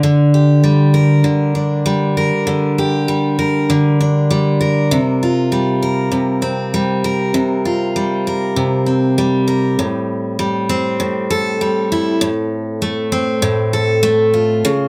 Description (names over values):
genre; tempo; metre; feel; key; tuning
pop; 98 BPM; 4/4; swing 55% on 16ths; F major; A4 = 439 Hz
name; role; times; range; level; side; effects
picked steel-string acoustic guitar; solo; 0.0-14.9 s; A2 to Bb4; -16 LUFS; equal; none
room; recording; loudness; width
moderate studio reverb, RT60 0.6 s; none; -16 LUFS; mono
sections
0.0-9.8 A section; 9.8-14.9 B section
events
none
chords
0.0 Gm/D; 4.9 C7sus4; 9.8 Am7; 12.2 F/A